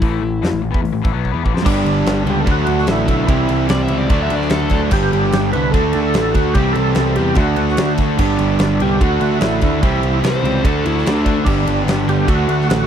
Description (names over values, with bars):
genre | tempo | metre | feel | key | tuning
classic rock | 147 BPM | 4/4 | straight | unclear | A4 = 440 Hz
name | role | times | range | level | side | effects
biting lead guitar | second line | 0.0-0.6, 3.7-4.8, 10.3-11.4 s | D4 to E5 | -23 LUFS | left 3 dB | overdrive
cranked stack guitar | riff | 0.0-12.9 s | G2 to G4 | -22 LUFS | left 12 dB | overdrive, spring reverb
picked electric bass | bass | 0.0-12.9 s | G1 to F2 | -20 LUFS | equal | none
huge arena drum kit | drums | 0.0-12.8 s | crash cymbal, hi-hat, kick drum, ride cymbal, snare drum | -20 LUFS | equal | none
sludgy distorted guitar | riff | 1.6-12.9 s | G2 to G4 | -21 LUFS | right 12 dB | overdrive
overdriven tonewheel organ | melody | 1.7-12.9 s | D4 to B4 | -22 LUFS | right 2 dB | slow rotary speaker, chorus vibrato
overdriven electric guitar | riff | 1.7-12.9 s | G2 to D4 | -23 LUFS | right 1 dB | none
room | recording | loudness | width
little or no reverb | dry, close 1970s-style studio recording | -14 LUFS | side -8 dB against mid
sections
0.0-1.7 A section; 1.7-12.9 B section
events
drum fill 1.2-1.7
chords
0.0 A5; 1.7 G; 2.5 D; 3.3 C; 4.1 D; 4.9 G; 5.7 D; 6.6 C; 7.4 D; 8.2 G; 9.0 D; 9.8 C; 10.6 D; 11.5 G; 12.3 D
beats
| 0.02 0.43 0.84 1.25 | 1.66 2.07 2.48 2.88 | 3.29 3.70 4.11 4.52 | 4.93 5.33 5.74 6.15 | 6.56 6.97 7.38 7.79 | 8.20 8.60 9.01 9.42 | 9.83 10.24 10.65 11.05 | 11.46 11.87 12.28 12.69